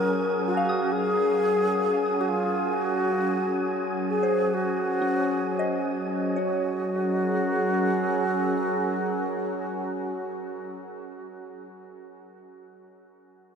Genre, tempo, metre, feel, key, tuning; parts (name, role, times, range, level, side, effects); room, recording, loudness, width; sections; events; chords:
ambient; 66 BPM; 4/4; straight; Gb major; A4 = 445 Hz
mellow alto flute; melody; 0.0-10.8 s; F4 to Bb4; -27 LUFS; equal; tape echo
warbly tape-like pad; sustained chords; 0.0-10.8 s; Gb3 to Bb4; -30 LUFS; equal; chorus, built-in reverb
soft synth bell; arpeggios; 0.0-12.5 s; Db4 to Eb6; -32 LUFS; left 1 dB; chorus, phaser, tape echo
overtone-sweeping drone; drone; 0.0-10.9 s; Gb3 to Db4; -34 LUFS; right 4 dB; chorus, built-in reverb
wind-like tuned noise texture; texture; 0.0-6.4 s; Ab5 to Eb6; -37 LUFS; right 1 dB; built-in reverb
wet huge ambient reverb, RT60 7.9 s; -23 LUFS; side -6 dB against mid
0.0-6.4 A section; 6.4-10.0 B section
0.0 Gbmaj9; 6.4 Gbadd9